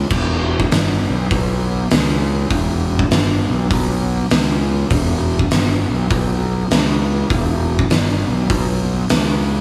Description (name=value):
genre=stoner and doom metal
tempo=100 BPM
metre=4/4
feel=swing 63% on 8ths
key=E dorian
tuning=A4 = 439 Hz
part: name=fuzz fingered electric bass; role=bass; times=0.0-9.6 s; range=E1 to C#2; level=-20 LUFS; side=equal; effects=overdrive
part: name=oversized low-tuned drum kit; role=drums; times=0.1-9.3 s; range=crash cymbal, hi-hat, kick drum, snare drum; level=-21 LUFS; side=equal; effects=none
room=light reverb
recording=small room ambience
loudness=-17 LUFS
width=mono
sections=0.0-9.6 A section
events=none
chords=none